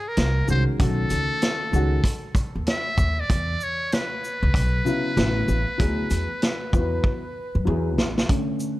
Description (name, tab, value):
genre	hip hop, jazz-hop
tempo	96 BPM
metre	4/4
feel	swing 61% on 16ths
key	unclear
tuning	A4 = 440 Hz
part	trumpet with metal mute	melody	0.0-7.7 s	A4 to E5	-28 LUFS	equal	analog delay
part	upright bass	bass	0.2-8.2 s	A1 to F#2	-24 LUFS	equal	none
part	vintage drum kit	drums	0.2-8.8 s	hi-hat, kick drum, shaker, snare drum	-24 LUFS	equal	none
part	dark upright piano	accompaniment	0.5-8.8 s	C#3 to B4	-27 LUFS	left 1 dB	none
room	studio ambience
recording	none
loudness	-21 LUFS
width	side -16 dB against mid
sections	0.0-8.3 A section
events	drum fill 7.0-8.3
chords	0.2 Cm7b5; 0.8 B9 (rootless); 3.3 Esus2; 5.2 Aadd9; 5.8 D69; 7.7 E; 8.3 Bm9/D (rootless)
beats	0.17 | 0.80 1.42 2.05 2.67 | 3.30 3.92 4.55 5.17 | 5.80 6.42 7.05 7.67 | 8.30